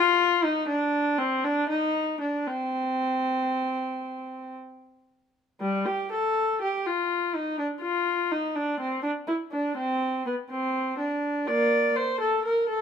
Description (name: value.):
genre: classical, baroque-style suite movement for unaccompanied viola.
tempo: 56-62 BPM.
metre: 3/4.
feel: rubato.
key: C minor.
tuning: A4 = 440 Hz.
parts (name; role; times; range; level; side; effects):
rich viola; solo; 0.0-12.8 s; G3 to D5; -24 LUFS; left 1 dB; none.
room: moderate stone room reverb, RT60 1.1 s.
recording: none.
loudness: -24 LUFS.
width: side -7 dB against mid.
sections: 0.0-5.6 A section; 5.6-12.8 A section.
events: none.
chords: none.